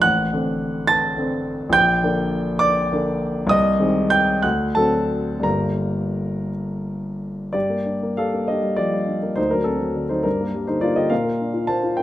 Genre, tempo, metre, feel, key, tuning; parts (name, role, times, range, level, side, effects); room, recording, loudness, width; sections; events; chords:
classical, romantic character piece for solo piano; 55-72 BPM (dotted quarters); 6/8; rubato; G minor; A4 = 440 Hz
warm grand piano; solo; 0.0-12.0 s; G1 to A6; -18 LUFS; equal
light reverb; close, detailed microphones; -18 LUFS; side -13 dB against mid
0.0-7.5 A section; 7.5-12.0 A section
0.0 D7/A; 1.7 Gm/Bb; 3.5 Ab/C; 4.4 D7; 5.4 Gm; 9.4 D7b9; 10.3 Gm; 11.1 Bb